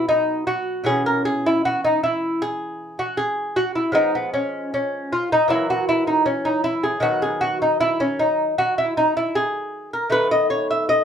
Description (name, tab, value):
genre	classical, baroque-style dance for lute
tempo	78 BPM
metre	4/4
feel	rubato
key	B major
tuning	A4 = 440 Hz
part	lute	solo	0.0-11.0 s	B2 to E5	-18 LUFS	equal	none
room	moderate studio reverb, RT60 0.5 s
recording	none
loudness	-19 LUFS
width	side -8 dB against mid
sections	0.0-11.0 A section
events	none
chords	0.0 B5; 0.9 C#m/B; 4.0 Fm7b5; 5.5 F#7/E; 7.0 B/D#; 10.1 B7/D#